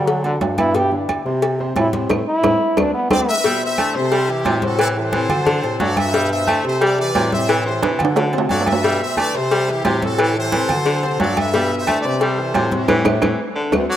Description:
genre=latin, salsa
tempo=178 BPM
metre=4/4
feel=straight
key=G major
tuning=A4 = 439 Hz
part: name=brilliant trombone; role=melody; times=0.0-3.3 s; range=D3 to G4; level=-20 LUFS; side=right 1 dB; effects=none
part: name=clear grand piano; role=accompaniment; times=0.0-13.8 s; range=B2 to C5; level=-25 LUFS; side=left 2 dB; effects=none
part: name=warm bass clarinet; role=bass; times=0.0-13.9 s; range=D2 to D3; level=-23 LUFS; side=equal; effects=none
part: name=congas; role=percussion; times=0.1-13.8 s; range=none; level=-27 LUFS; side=left 2 dB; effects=none
part: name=cowbell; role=percussion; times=0.1-13.8 s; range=none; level=-24 LUFS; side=left 4 dB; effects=none
part: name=agogo bells and timbales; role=percussion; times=0.2-13.8 s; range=none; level=-23 LUFS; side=right 5 dB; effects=none
part: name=claves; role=percussion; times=0.6-13.8 s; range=none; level=-33 LUFS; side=left 1 dB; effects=none
part: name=brilliant trumpet section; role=melody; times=3.1-14.0 s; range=E4 to E5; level=-23 LUFS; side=left 1 dB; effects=none
part: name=clear baritone saxophone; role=second line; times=3.5-14.0 s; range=C3 to A3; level=-22 LUFS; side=left 1 dB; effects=none
room=moderate lush hall reverb, RT60 2.7 s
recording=rough home demo mix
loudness=-15 LUFS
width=side -11 dB against mid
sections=0.0-3.4 A section; 3.4-14.0 B section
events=trombone solo 0.0-3.4; drum fill 2.1-3.4, 7.8-8.8, 13.2-14.0; band accent 2.1-3.4, 12.9-14.0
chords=0.1 D; 0.8 G6; 1.4 Am; 2.8 D5; 3.4 G6; 4.1 C6; 4.8 Am7; 5.5 D7; 6.1 G6; 6.8 C6; 7.5 Am7; 8.2 D7; 8.8 G6; 9.5 C6; 10.2 Am7; 10.9 D7; 11.5 G6; 12.2 C6; 12.9 Am7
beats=0.08 0.41 | 0.75 1.09 1.43 1.76 | 2.10 2.44 2.77 3.11 | 3.45 3.78 4.12 4.46 | 4.80 5.13 5.47 5.81 | 6.14 6.48 6.82 7.16 | 7.49 7.83 8.17 8.50 | 8.84 9.18 9.52 9.85 | 10.19 10.53 10.87 11.20 | 11.54 11.88 12.21 12.55 | 12.89 13.23 13.56 13.90

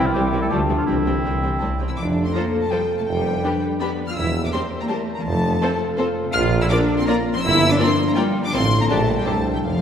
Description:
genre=cinematic, playful, whimsical film cue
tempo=164 BPM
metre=3/4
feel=straight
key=F major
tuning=A4 = 440 Hz
part: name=warm studio violin section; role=melody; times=0.0-9.8 s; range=D5 to F6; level=-26 LUFS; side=left 2 dB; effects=none
part: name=mellow hollow silver concert flute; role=second line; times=0.0-1.8 s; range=G5 to A5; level=-27 LUFS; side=right 1 dB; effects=none
part: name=rich studio violin section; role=second line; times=0.0-9.3 s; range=A3 to D5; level=-30 LUFS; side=left 2 dB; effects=none
part: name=warm clarinet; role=second line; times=0.0-1.8 s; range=C4 to F4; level=-29 LUFS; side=left 1 dB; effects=none
part: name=warm oboe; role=second line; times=0.0-1.8 s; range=E4 to A4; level=-29 LUFS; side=right 2 dB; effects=none
part: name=rich studio viola section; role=accompaniment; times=0.0-9.3 s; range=F3 to G4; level=-29 LUFS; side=right 1 dB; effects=none
part: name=mellow French horn section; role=sustained chords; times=0.0-1.8 s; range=E3 to A3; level=-30 LUFS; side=left 3 dB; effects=none
part: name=concert harp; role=arpeggios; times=0.0-9.8 s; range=E2 to G5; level=-24 LUFS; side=left 3 dB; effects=none
part: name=clear tuba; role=bass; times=0.0-9.8 s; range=E1 to D2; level=-27 LUFS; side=right 2 dB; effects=none
part: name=warm studio cello section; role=bass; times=0.0-9.8 s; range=E3 to F4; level=-26 LUFS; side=right 1 dB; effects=none
part: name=warm studio double bass section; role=bass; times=0.0-9.8 s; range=G1 to F2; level=-25 LUFS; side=right 2 dB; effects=none
room=wet scoring stage reverb, RT60 1.9 s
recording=heard from further back in the room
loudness=-18 LUFS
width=side -8 dB against mid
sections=0.0-2.0 A section; 2.0-9.8 B section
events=none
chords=0.0 C; 0.5 Dm; 0.9 C; 2.0 F; 3.1 G7/F; 4.2 C7/E; 5.3 F; 6.3 Bb; 7.4 Gm7; 8.5 F/A; 8.9 Gm/Bb; 9.3 C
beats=0.14 0.50 | 0.87 1.24 1.61 | 1.98 2.35 2.71 | 3.08 3.44 3.81 | 4.17 4.54 4.90 | 5.26 5.62 5.98 | 6.35 6.71 7.07 | 7.44 7.80 8.17 | 8.53 8.89 9.26 | 9.63

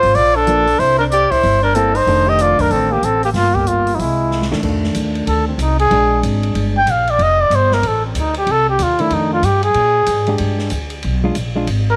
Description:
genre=jazz, small-group swing and bop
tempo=187 BPM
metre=4/4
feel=swing 63% on 8ths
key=F mixolydian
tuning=A4 = 441 Hz
part: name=breathy trumpet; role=melody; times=0.0-12.0 s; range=C4 to G5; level=-17 LUFS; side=equal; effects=none
part: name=bright alto saxophone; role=second line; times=0.0-4.5 s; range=F3 to G4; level=-25 LUFS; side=equal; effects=none
part: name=upright bass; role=bass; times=0.0-12.0 s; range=F1 to Bb2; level=-22 LUFS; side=equal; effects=none
part: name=open jazz drum kit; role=drums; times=0.0-11.8 s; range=crash cymbal, hi-hat, kick drum, ride cymbal, snare drum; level=-30 LUFS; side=equal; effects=none
part: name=hollow-body jazz guitar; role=accompaniment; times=0.5-6.8, 9.0-11.7 s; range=Eb3 to A4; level=-23 LUFS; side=equal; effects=none
room=moderate plate reverb, RT60 2.4 s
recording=none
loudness=-16 LUFS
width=mono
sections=0.0-4.6 A section; 4.6-12.0 B section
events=drum fill 4.3-4.6; trumpet solo 4.6-12.0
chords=0.0 Gm7 (rootless); 0.8 C6; 2.1 F6; 3.4 Gm7; 4.0 Caug; 4.6 F6; 5.9 Bb6; 7.2 F69; 8.5 Cm; 9.1 F13; 9.8 Bb6; 11.0 Bdim7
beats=0.16 0.48 | 0.80 1.12 1.44 1.76 | 2.08 2.40 2.72 3.04 | 3.36 3.68 4.00 4.32 | 4.64 4.96 5.28 5.60 | 5.92 6.24 6.56 6.88 | 7.20 7.52 7.84 8.16 | 8.48 8.80 9.12 9.44 | 9.76 10.08 10.40 10.72 | 11.04 11.36 11.68

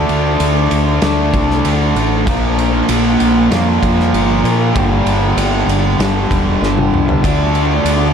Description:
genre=rock, shoegaze and dream pop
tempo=97 BPM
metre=4/4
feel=straight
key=unclear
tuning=A4 = 440 Hz
part: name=fuzz guitar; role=riff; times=0.0-8.1 s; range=G2 to D4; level=-14 LUFS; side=equal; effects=distortion, lush chorus
part: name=growling fingered electric bass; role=bass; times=0.0-8.1 s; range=E1 to Bb2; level=-17 LUFS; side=equal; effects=overdrive
part: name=loose indie drum kit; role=drums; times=0.1-8.0 s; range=kick drum, ride cymbal, snare drum, toms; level=-19 LUFS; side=equal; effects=none
room=wet huge ambient reverb, RT60 6.0 s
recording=dreamy mix soaked in reverb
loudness=-12 LUFS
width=side -7 dB against mid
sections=0.0-8.1 A section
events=drum fill 6.6-7.2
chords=0.0 D5; 2.3 Bb5; 4.8 G5; 7.2 D5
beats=0.41 1.03 1.65 | 2.27 2.89 3.51 4.13 | 4.75 5.38 6.00 6.62 | 7.24 7.87

